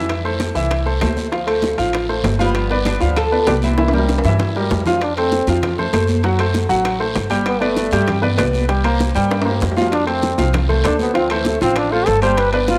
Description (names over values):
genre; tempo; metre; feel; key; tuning
latin, salsa; 195 BPM; 4/4; straight; F major; A4 = 442 Hz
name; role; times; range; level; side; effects
clear concert grand piano; accompaniment; 0.0-12.8 s; E3 to G5; -21 LUFS; equal; cassette tape
upright bass; bass; 0.0-12.8 s; G1 to G2; -23 LUFS; equal; none
bongos; percussion; 0.1-12.8 s; none; -29 LUFS; equal; none
congas; percussion; 0.1-12.8 s; none; -29 LUFS; equal; none
guiro; percussion; 0.1-12.8 s; none; -35 LUFS; equal; none
timbales; percussion; 0.1-12.7 s; none; -30 LUFS; equal; none
oud; melody; 2.4-4.8 s; G3 to A4; -24 LUFS; equal; cassette tape
clear trombone; melody; 5.0-12.8 s; E3 to C5; -22 LUFS; equal; cassette tape
room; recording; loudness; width
moderate lush hall reverb, RT60 2.3 s; home recording on cassette; -17 LUFS; mono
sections
0.0-5.0 A section; 5.0-12.8 B section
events
drum fill 3.8-5.0, 9.3-9.9; trombone solo 5.0-12.8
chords
0.1 Fmaj7; 1.3 Dm7; 2.6 G7; 3.8 C7; 5.0 F; 6.2 F#dim; 7.5 G; 8.7 C5; 9.9 F; 11.2 Dm7